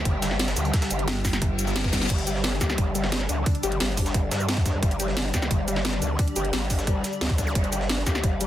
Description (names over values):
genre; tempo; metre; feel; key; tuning
dark technical drum and bass; 176 BPM; 4/4; straight; unclear; A4 = 437 Hz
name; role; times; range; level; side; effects
swarming drone; sustained chords; 0.0-8.5 s; D3 to G5; -32 LUFS; equal; built-in reverb, sidechain pumping
growl bass; bass; 0.0-8.5 s; G1 to G2; -28 LUFS; equal; chorus, overdrive
breakbeat sampler-style drum kit; drums; 0.1-8.5 s; hi-hat, snare drum; -36 LUFS; right 1 dB; none
drum and bass drum kit; drums; 0.1-8.5 s; crash cymbal, hi-hat, shaker, snare drum; -28 LUFS; equal; overdrive, small room ambience
electronic kick drum; drums; 0.1-8.3 s; none; -25 LUFS; equal; overdrive, small room ambience
pulsing pluck wobble bass; bass; 1.1-2.1 s; G1; -28 LUFS; equal; chorus
reverse cymbal and zap; sound effects; 1.5-2.1, 7.5-7.6 s; none; -35 LUFS; left 4 dB; none
soft round pluck; arpeggios; 2.1-8.5 s; G3 to G4; -32 LUFS; left 3 dB; chorus, sidechain pumping, tape echo
room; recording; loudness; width
little or no reverb; dense, heavily limited modern master, faint mains hum; -22 LUFS; side -12 dB against mid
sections
0.0-8.5 A section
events
reverse cymbal 1.5-2.1; drum fill 1.8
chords
0.0 G5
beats
0.05 0.40 | 0.74 1.08 1.42 1.76 | 2.10 2.44 2.78 3.12 | 3.46 3.80 4.14 4.49 | 4.83 5.17 5.51 5.85 | 6.19 6.53 6.87 7.21 | 7.55 7.89 8.24